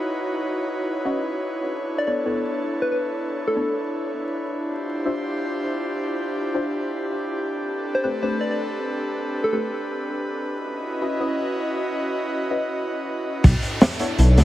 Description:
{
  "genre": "drum and bass, jungle",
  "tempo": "161 BPM",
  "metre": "4/4",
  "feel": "straight",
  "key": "unclear",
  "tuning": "A4 = 441 Hz",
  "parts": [
    { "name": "airy breathy pad", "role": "sustained chords", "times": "0.0-14.4 s", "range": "C4 to E5", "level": "-26 LUFS", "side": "equal", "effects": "chorus" },
    { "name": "deep mellow chord stab", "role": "stabs", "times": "1.1-14.4 s", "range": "A3 to E5", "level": "-29 LUFS", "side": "left 2 dB", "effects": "chorus, dub echo" },
    { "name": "soft struck synth lead", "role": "melody", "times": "2.0-3.8, 7.9-9.6 s", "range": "A4 to D5", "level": "-26 LUFS", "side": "left 1 dB", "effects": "chorus, dub echo" },
    { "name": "dark detuned saw bass", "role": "bass", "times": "13.4-14.4 s", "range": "B1 to D2", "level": "-14 LUFS", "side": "equal", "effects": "none" },
    { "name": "crunchy breakbeat drum kit", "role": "drums", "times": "13.4-14.4 s", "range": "crash cymbal, hi-hat, kick drum, snare drum", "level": "-17 LUFS", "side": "equal", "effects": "none" },
    { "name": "downlifter", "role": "sound effects", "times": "13.4-14.4 s", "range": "none", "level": "-33 LUFS", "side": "right 2 dB", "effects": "none" }
  ],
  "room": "moderate plate reverb, RT60 2.0 s, small room ambience",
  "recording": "vinyl crackle",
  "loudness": "-22 LUFS",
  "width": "side -14 dB against mid",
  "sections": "0.0-13.4 A section; 13.4-14.4 B section",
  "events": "drop 13.4-14.4",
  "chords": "0.0 C#m11; 1.5 Bm11; 4.5 Dm11; 7.5 Am11; 10.5 C#m11; 13.4 Bm11"
}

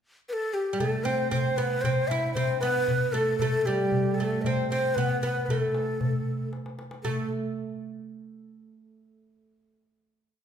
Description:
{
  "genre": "Arabic maqam ensemble",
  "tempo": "115 BPM",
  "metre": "3/4",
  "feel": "straight",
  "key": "A minor",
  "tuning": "A4 = 439 Hz",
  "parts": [
    { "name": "breathy ney", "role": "melody", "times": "0.3-7.3 s", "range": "G4 to E5", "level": "-28 LUFS", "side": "left 1 dB", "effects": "none" },
    { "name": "oud", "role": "second line", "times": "0.7-7.3 s", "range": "G3 to E4", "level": "-30 LUFS", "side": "right 3 dB", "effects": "none" },
    { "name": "darbuka", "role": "percussion", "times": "0.8-7.3 s", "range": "none", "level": "-30 LUFS", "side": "left 2 dB", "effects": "none" }
  ],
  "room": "wet recital hall reverb, RT60 1.6 s",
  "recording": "recorded in a church or concert hall",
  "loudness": "-25 LUFS",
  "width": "side -8 dB against mid",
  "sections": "0.0-0.8 pickup bar; 0.8-7.0 A section; 7.0-8.6 final note",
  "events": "drum fill 6.5-7.0",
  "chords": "none"
}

